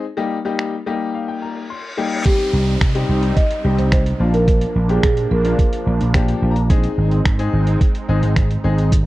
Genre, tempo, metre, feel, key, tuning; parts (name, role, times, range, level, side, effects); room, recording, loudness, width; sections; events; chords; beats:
dance-pop; 108 BPM; 4/4; straight; C minor; A4 = 440 Hz
clear concert grand piano; accompaniment; 0.0-8.9 s; F3 to C6; -23 LUFS; left 5 dB
lo-fi sampler-style drum kit; drums; 0.6-9.1 s; crash cymbal, finger snaps, hi-hat, kick drum, shaker; -17 LUFS; right 1 dB
reverse cymbal and downlifter; sound effects; 1.4-6.7 s; -32 LUFS; equal
marimba with medium mallets; melody; 2.3-6.1 s; G4 to Eb5; -23 LUFS; right 2 dB; tape echo
filtered supersaw swell; sustained chords; 2.3-9.1 s; F3 to Eb4; -28 LUFS; right 3 dB; sidechain pumping
vintage slap bass; bass; 2.5-9.1 s; Ab1 to C3; -17 LUFS; right 1 dB; sidechain pumping
little or no reverb; dry, close 1970s-style studio recording; -15 LUFS; side -17 dB against mid
0.0-2.3 A section; 2.3-9.1 B section
grand piano fill 0.6-2.3, 5.9-6.7; reverse cymbal 1.4-2.3
0.0 Eb; 2.3 Cm; 4.2 Bb; 6.7 Ab
| 0.03 0.59 1.14 1.70 | 2.25 2.81 3.37 3.92 | 4.48 5.03 5.59 6.14 | 6.70 7.25 7.81 8.37 | 8.92